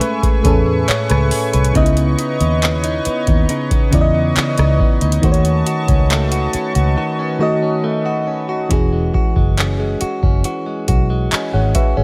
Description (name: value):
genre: contemporary R&B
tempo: 69 BPM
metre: 4/4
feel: straight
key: E major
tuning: A4 = 444 Hz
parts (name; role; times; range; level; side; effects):
- FM electric piano; accompaniment; 0.0-12.0 s; A2 to G#5; -22 LUFS; equal; none
- chorused pulse-width pad; sustained chords; 0.0-8.7 s; B4 to C#6; -27 LUFS; equal; sidechain pumping
- direct-recorded clean electric guitar; arpeggios; 0.0-12.0 s; C#3 to B4; -25 LUFS; equal; tape echo
- booming analog drum machine; drums; 0.0-12.0 s; handclaps, hi-hat, kick drum, rim click; -20 LUFS; equal; none
- downlifter; sound effects; 0.4-1.8 s; none; barely audible; none; none
- vintage muted fingered electric bass; bass; 0.4-12.0 s; E1 to E2; -19 LUFS; equal; none
room: digital ambience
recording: none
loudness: -16 LUFS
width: mono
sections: 0.0-8.7 A section; 8.7-12.0 B section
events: FM electric piano fill 0.4-1.8; break 7.0-8.7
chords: 0.0 Amaj9; 1.8 C#m9; 5.2 B9; 8.7 E69